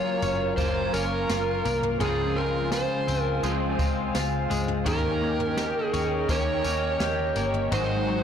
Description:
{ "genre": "dream pop", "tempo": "84 BPM", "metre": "4/4", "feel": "straight", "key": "Db major", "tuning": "A4 = 440 Hz", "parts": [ { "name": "overdriven slide guitar", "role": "melody", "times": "0.0-8.2 s", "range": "Ab4 to Db5", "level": "-28 LUFS", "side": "right 2 dB", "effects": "ping-pong delay" }, { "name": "clean electric guitar", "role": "accompaniment", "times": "0.0-8.2 s", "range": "Ab2 to Ab4", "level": "-33 LUFS", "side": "right 5 dB", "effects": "tremolo, ensemble chorus" }, { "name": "warbly tape-like pad", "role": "sustained chords", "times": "0.0-8.2 s", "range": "Ab4 to C6", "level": "-32 LUFS", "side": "right 1 dB", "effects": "chorus, built-in reverb" }, { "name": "twelve-string electric guitar", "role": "arpeggios", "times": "0.0-8.2 s", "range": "Ab2 to G4", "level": "-30 LUFS", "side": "left 6 dB", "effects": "lush chorus, ping-pong delay" }, { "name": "vintage muted fingered electric bass", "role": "bass", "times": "0.2-8.2 s", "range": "Gb1 to Eb2", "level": "-32 LUFS", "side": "equal", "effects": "tube saturation" }, { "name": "jazz brush drum kit", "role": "drums", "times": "0.2-7.9 s", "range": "kick drum, snare drum, tambourine, toms", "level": "-32 LUFS", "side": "equal", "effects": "soft clipping on snare" } ], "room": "moderate plate reverb, RT60 1.5 s, small room ambience", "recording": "blown-out, overdriven recording, overdrive", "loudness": "-23 LUFS", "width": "side -8 dB against mid", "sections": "0.0-8.2 A section", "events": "none", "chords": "0.0 Gbmaj7; 2.0 Dbmaj7; 4.9 Eb7; 7.7 Ab7" }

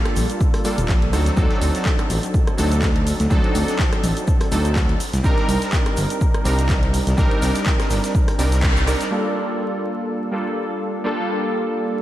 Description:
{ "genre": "deep house", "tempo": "124 BPM", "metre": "4/4", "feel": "swing 55% on 16ths", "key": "G minor", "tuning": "A4 = 440 Hz", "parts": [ { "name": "warm analog keys", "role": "stabs", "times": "0.0-12.0 s", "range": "F#3 to Bb4", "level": "-22 LUFS", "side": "right 1 dB", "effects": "chorus, sidechain pumping, low-pass filter, ping-pong delay" }, { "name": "punchy analog drum machine", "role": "drums", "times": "0.1-9.2 s", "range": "cabasa, crash cymbal, handclaps, hi-hat, rim click", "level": "-28 LUFS", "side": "equal", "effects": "low-pass filter on snare, low-pass filter on perc, low-pass filter on hats, low-pass filter on cymbals" }, { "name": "smooth gliding synth bass", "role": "bass", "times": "0.2-8.9 s", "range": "Eb1 to D2", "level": "-20 LUFS", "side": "equal", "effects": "sidechain pumping" }, { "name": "loose indie drum kit", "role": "drums", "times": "0.2-9.1 s", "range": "hi-hat, shaker, snare drum", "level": "-37 LUFS", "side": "equal", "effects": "none" }, { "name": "electronic kick drum", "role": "drums", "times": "0.4-8.7 s", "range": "none", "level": "-20 LUFS", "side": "equal", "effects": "none" }, { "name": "hollow soft pad", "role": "sustained chords", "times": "9.1-12.0 s", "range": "Bb3 to F5", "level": "-27 LUFS", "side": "equal", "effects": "chorus, sidechain pumping" } ], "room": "moderate lush hall reverb, RT60 1.7 s, small room ambience", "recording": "dreamy mix soaked in reverb, vinyl crackle", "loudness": "-17 LUFS", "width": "side -14 dB against mid", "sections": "0.0-9.1 A section; 9.1-12.0 B section", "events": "band accent 8.6; filter sweep on synth keys 9.1-12.0", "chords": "0.0 Ebmaj9#11 (rootless); 1.1 D7b9; 5.0 Cm9; 9.1 Gm9" }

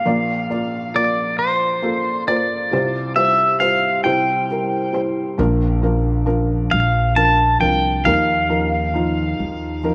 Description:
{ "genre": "acoustic folk-pop ballad", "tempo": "45 BPM (dotted quarters)", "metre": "6/8", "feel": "straight", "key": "unclear", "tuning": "A4 = 440 Hz", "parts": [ { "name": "pedal steel guitar", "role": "melody", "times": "0.0-9.9 s", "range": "C5 to A5", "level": "-21 LUFS", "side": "equal", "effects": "slapback echo" }, { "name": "felt-muted upright piano", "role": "accompaniment", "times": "0.0-9.9 s", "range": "Bb1 to D5", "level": "-23 LUFS", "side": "equal", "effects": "none" }, { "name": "upright bass", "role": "bass", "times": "5.4-9.9 s", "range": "Bb1 to Eb2", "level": "-23 LUFS", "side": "equal", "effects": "none" } ], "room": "light reverb, studio ambience", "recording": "none", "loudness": "-18 LUFS", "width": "mono", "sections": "0.0-9.9 A section", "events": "none", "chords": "0.1 Bb; 2.7 Csus4; 4.0 C; 5.4 Bb; 8.1 Ebsus2" }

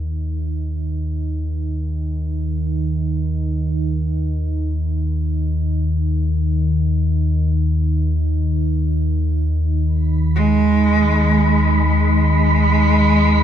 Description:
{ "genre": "dark ambient drone", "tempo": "free time", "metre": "none", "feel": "none", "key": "unclear", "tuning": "A4 = 441 Hz", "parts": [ { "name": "deep rumbling drone", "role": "drone", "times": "0.0-13.4 s", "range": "Eb2 to Eb3", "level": "-17 LUFS", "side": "equal", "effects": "built-in reverb" }, { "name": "wind-like tuned noise texture", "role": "texture", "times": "10.5-13.4 s", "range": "Cb6", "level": "-23 LUFS", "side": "right 2 dB", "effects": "built-in reverb" }, { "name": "rich cello", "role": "melody", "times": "10.4-13.4 s", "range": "Ab3", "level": "-16 LUFS", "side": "right 1 dB", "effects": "ping-pong delay" } ], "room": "wet huge ambient reverb, RT60 7.6 s", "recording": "none", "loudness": "-16 LUFS", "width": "side -9 dB against mid", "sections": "0.0-13.4 A section", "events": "none", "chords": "0.0 N.C.; 9.9 Abm/Eb" }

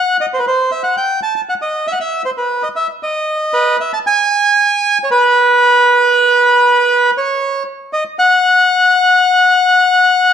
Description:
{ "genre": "tango", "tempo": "117 BPM", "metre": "4/4", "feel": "rubato", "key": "unclear", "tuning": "A4 = 436 Hz", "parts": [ { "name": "bandoneon", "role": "solo", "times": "0.0-10.3 s", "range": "B4 to A5", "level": "-10 LUFS", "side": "equal", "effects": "none" } ], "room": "moderate large studio reverb, RT60 1.3 s", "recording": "dark, warm production", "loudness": "-10 LUFS", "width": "side -8 dB against mid", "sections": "0.0-4.0 A section; 4.0-10.3 B section", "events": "none", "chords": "none" }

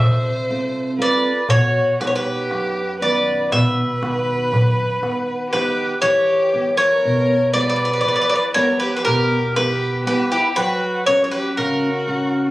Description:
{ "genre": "greek folk, Greek bouzouki band", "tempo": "119 BPM (eighths)", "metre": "9/8", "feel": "straight", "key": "E dorian sharp4", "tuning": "A4 = 439 Hz", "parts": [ { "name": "Greek bouzouki", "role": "melody", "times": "0.0-12.5 s", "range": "G4 to E5", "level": "-18 LUFS", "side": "equal", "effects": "plate reverb" }, { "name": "warm violin", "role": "second line", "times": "0.0-12.5 s", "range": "E4 to C5", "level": "-24 LUFS", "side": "right 1 dB", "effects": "none" }, { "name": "fingerpicked steel-string acoustic guitar", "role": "accompaniment", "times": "0.0-12.5 s", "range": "F#2 to F#5", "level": "-23 LUFS", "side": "equal", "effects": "none" }, { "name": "darbuka", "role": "percussion", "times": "0.2-5.8 s", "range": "none", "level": "-20 LUFS", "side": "equal", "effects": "none" } ], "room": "moderate small room reverb, RT60 0.6 s", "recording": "recorded on a phone in the room, club reverb", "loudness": "-16 LUFS", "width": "side -17 dB against mid", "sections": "0.0-6.0 A section; 6.0-12.5 B section", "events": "none", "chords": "0.0 F; 1.5 B; 6.0 Em; 10.6 F#" }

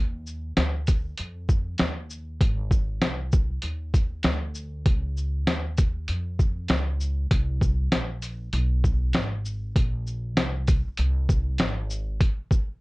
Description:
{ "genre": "hip hop, jazz-hop", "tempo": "98 BPM", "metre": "4/4", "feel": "swing 64% on 16ths", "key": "unclear", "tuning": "A4 = 441 Hz", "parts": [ { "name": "upright bass", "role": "bass", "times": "0.0-12.2 s", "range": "Ab1 to F2", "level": "-28 LUFS", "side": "equal", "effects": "none" }, { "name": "lo-fi sampler-style drum kit", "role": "drums", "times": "0.3-12.7 s", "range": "hi-hat, kick drum, shaker, snare drum", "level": "-23 LUFS", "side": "equal", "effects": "vintage 12-bit sampler grit" } ], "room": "light reverb", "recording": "dark, warm production", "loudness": "-23 LUFS", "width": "side -23 dB against mid", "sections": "0.0-12.8 A section", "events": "none", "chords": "none" }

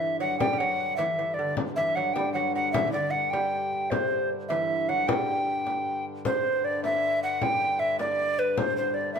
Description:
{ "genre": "medieval dance", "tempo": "103 BPM (dotted quarters)", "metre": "6/8", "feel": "straight", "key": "unclear", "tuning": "A4 = 440 Hz", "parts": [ { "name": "mellow hollow tenor recorder", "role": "melody", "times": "0.0-9.2 s", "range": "B4 to G5", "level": "-26 LUFS", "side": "equal", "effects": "none" }, { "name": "lute", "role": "second line", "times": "0.0-6.0 s", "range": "C3 to G3", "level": "-33 LUFS", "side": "right 5 dB", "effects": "none" }, { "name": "hand-pumped harmonium", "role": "drone", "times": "0.0-9.2 s", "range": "G2 to D3", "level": "-35 LUFS", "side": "left 4 dB", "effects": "none" }, { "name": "frame drum", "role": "percussion", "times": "0.4-9.2 s", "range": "none", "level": "-32 LUFS", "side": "left 3 dB", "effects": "none" } ], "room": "moderate large studio reverb, RT60 1.2 s", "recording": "band playing live in one room", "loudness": "-24 LUFS", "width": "side -6 dB against mid", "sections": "0.0-6.2 A section; 6.2-9.2 A section", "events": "none", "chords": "none" }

